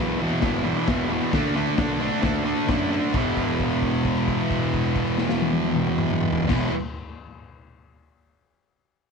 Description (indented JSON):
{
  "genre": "garage rock duo or trio",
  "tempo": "133 BPM",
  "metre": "4/4",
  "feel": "straight",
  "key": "unclear",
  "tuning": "A4 = 440 Hz",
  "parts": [
    { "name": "thick fuzz guitar", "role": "riff", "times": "0.0-6.7 s", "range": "E2 to D4", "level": "-22 LUFS", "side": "right 1 dB", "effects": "distortion" },
    { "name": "fuzz picked electric bass", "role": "bass", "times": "0.0-6.7 s", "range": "E1 to F#2", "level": "-30 LUFS", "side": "right 1 dB", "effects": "overdrive" },
    { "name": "raw garage drum kit", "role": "drums", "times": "0.4-6.6 s", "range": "crash cymbal, kick drum, snare drum, toms", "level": "-27 LUFS", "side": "left 4 dB", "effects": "vintage 12-bit sampler grit" }
  ],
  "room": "light reverb, small room ambience",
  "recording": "1960s-style stereo",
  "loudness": "-21 LUFS",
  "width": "side -5 dB against mid",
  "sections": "0.0-3.1 A section; 3.1-6.8 B section",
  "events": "held note 3.1-6.5",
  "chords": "0.0 Em; 1.3 D; 3.1 E5"
}